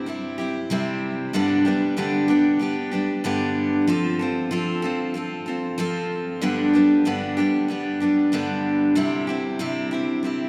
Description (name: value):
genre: country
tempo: 94 BPM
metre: 4/4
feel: straight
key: unclear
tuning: A4 = 440 Hz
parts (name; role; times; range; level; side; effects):
- picked steel-string acoustic guitar; solo; 0.0-10.5 s; G2 to A4; -23 LUFS; equal; none
room: wet cathedral reverb, RT60 5.7 s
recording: recorded in a church or concert hall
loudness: -23 LUFS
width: mono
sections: 0.0-10.5 A section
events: none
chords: 0.0 C; 1.3 G; 3.9 F; 6.4 G; 9.0 C